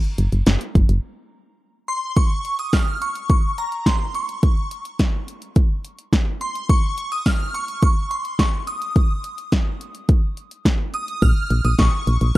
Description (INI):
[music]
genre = synth-pop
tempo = 106 BPM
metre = 4/4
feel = straight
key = Bb minor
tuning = A4 = 440 Hz
[part]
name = deep house drum kit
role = drums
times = 0.0-12.4 s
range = hi-hat, kick drum, snare drum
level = -17 LUFS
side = equal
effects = none
[part]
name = solid FM bass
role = bass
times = 0.2-1.0, 11.2-12.4 s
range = Gb1 to Bb1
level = -18 LUFS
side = equal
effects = none
[part]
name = shimmering bell with halo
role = melody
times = 1.9-12.4 s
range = Bb5 to F6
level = -25 LUFS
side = equal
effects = ensemble chorus, phaser, tape echo
[sound]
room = digital ambience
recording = dark, warm production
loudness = -18 LUFS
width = side -18 dB against mid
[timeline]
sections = 0.0-2.2 A section; 2.2-12.4 B section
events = break 1.0-2.2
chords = 0.0 N.C.; 11.2 Bbm